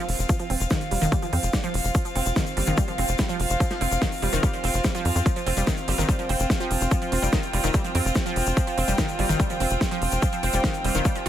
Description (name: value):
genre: psychedelic trance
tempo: 145 BPM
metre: 4/4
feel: straight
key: unclear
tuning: A4 = 441 Hz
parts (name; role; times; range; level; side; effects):
- wide unison pluck; riff; 0.0-11.3 s; Eb3 to C4; -29 LUFS; right 1 dB; auto-pan, sidechain pumping, ping-pong delay
- warm studio string section; texture; 0.0-11.3 s; C4 to G5; -28 LUFS; right 1 dB; sidechain pumping
- tight sequencer bass; bass; 0.1-11.3 s; F1 to F2; -25 LUFS; equal; none
- big-room dance drum kit; drums; 0.1-11.3 s; hi-hat, snare drum; -30 LUFS; right 1 dB; none
- egg shaker; percussion; 0.2-11.2 s; none; -35 LUFS; left 8 dB; none
- electronic kick drum; drums; 0.3-11.1 s; none; -24 LUFS; equal; none
room: light reverb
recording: none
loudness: -21 LUFS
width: side -11 dB against mid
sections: 0.0-11.3 A section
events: none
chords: 0.0 F5